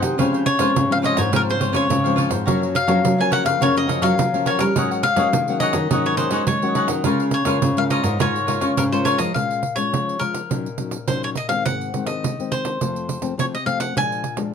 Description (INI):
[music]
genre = samba and choro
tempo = 105 BPM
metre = 4/4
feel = straight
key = Db major, Bb minor from 9.3 s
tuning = A4 = 440 Hz
[part]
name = cavaquinho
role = accompaniment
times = 0.0-9.3 s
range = Eb4 to Gb5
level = -25 LUFS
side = left 1 dB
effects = none
[part]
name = nylon-string guitar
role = accompaniment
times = 0.0-14.5 s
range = F2 to F4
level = -26 LUFS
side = left 6 dB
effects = none
[part]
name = nylon-string guitar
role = bass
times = 0.0-9.3 s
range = Ab2 to Ab3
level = -22 LUFS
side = equal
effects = none
[part]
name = pandeiro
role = percussion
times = 0.0-14.5 s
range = none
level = -25 LUFS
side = right 6 dB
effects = none
[part]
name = cavaquinho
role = melody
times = 0.5-14.4 s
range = Bb4 to Ab5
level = -22 LUFS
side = left 3 dB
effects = none
[sound]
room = light reverb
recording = close, detailed microphones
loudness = -18 LUFS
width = side -7 dB against mid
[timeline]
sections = 0.0-9.3 A section; 9.3-14.5 B section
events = none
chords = 0.2 Dbmaj7; 2.5 Gbmaj7; 4.8 Ab9sus4; 7.1 Db6; 9.3 Bbm7; 10.5 Gb6/Bb; 11.7 Ab; 12.8 F; 14.0 Bb7